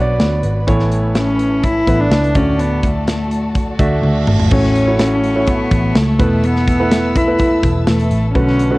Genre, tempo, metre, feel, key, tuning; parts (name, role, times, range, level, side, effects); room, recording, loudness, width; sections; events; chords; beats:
piano-driven pop; 125 BPM; 4/4; straight; A major; A4 = 440 Hz
warm concert grand piano; accompaniment; 0.0-8.8 s; A2 to E5; -19 LUFS; right 1 dB; cassette tape, plate reverb
warm studio string section; sustained chords; 0.0-8.8 s; E4 to E6; -30 LUFS; left 2 dB; cassette tape, plate reverb
vintage muted picked electric bass; bass; 0.0-8.8 s; E1 to D2; -18 LUFS; equal
modern studio drum kit; drums; 0.2-8.7 s; crash cymbal, hi-hat, kick drum, snare drum, toms; -18 LUFS; equal; cassette tape
rich cello; melody; 1.2-8.8 s; A3 to E4; -17 LUFS; left 1 dB; plate reverb
reverse cymbal; sound effects; 3.8-4.5 s; -29 LUFS; right 7 dB
moderate booth ambience, RT60 0.3 s; home recording on cassette; -12 LUFS; side -21 dB against mid
0.0-4.5 A section; 4.5-8.8 B section
reverse cymbal 3.8-4.5; drum fill 4.0-4.5
0.0 Bm; 0.7 Aadd9; 2.4 D; 4.5 A6; 6.2 Esus4
0.20 | 0.68 1.16 1.64 2.12 | 2.60 3.08 3.56 4.04 | 4.52 5.00 5.48 5.96 | 6.44 6.92 7.40 7.88 | 8.35